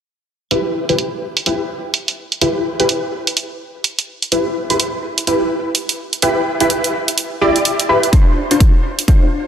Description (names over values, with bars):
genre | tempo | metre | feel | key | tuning
bass house | 126 BPM | 4/4 | swing 60% on 16ths | E phrygian | A4 = 442 Hz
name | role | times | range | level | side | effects
orchestra-hit-like synth stab | stabs | 0.5-9.2 s | D4 to D5 | -17 LUFS | equal | built-in reverb, phaser, sidechain pumping, tape echo
electronic hi-hat | drums | 0.5-9.2 s | none | -18 LUFS | right 3 dB | low-pass filter on hats, low-pass filter on room
electronic kick drum | drums | 8.1-9.2 s | none | -11 LUFS | equal | none
room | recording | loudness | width
moderate lush hall reverb, RT60 2.0 s | dense, heavily limited modern master | -14 LUFS | side -9 dB against mid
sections
0.5-9.5 A section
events
filter sweep on synth stab 0.5-9.5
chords
0.5 Em; 8.1 Dm7